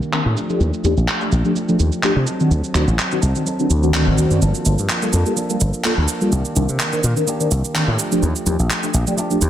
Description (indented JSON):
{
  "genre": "filtered disco house",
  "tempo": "126 BPM",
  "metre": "4/4",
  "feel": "swing 54% on 16ths",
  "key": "unclear",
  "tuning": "A4 = 442 Hz",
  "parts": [
    { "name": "semi-hollow electric guitar", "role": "riff", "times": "0.0-9.5 s", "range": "Eb3 to A4", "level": "-26 LUFS", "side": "equal", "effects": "low-pass filter" },
    { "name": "electronic shaker and handclaps", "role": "drums", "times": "0.0-9.5 s", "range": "none", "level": "-23 LUFS", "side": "right 1 dB", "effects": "low-pass filter on hats, low-pass filter on perc, soft clipping on snare, low-pass filter on snare, low-pass filter on cymbals, low-pass filter on room" },
    { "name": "mellow synth brass", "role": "accompaniment", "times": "0.1-9.4 s", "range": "Eb3 to D5", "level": "-21 LUFS", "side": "equal", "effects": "chorus, phaser, low-pass filter" },
    { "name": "slap bass", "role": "bass", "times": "0.3-9.5 s", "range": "G1 to C3", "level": "-17 LUFS", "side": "equal", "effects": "low-pass filter" }
  ],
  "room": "light reverb",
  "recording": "dense, heavily limited modern master",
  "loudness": "-16 LUFS",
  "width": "side -11 dB against mid",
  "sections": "0.0-9.5 A section",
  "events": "filter sweep 0.0-9.5",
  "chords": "0.4 Ebmaj9#11; 2.3 D7b9; 4.4 Gm9; 6.3 Cm9; 8.0 Ebmaj9#11"
}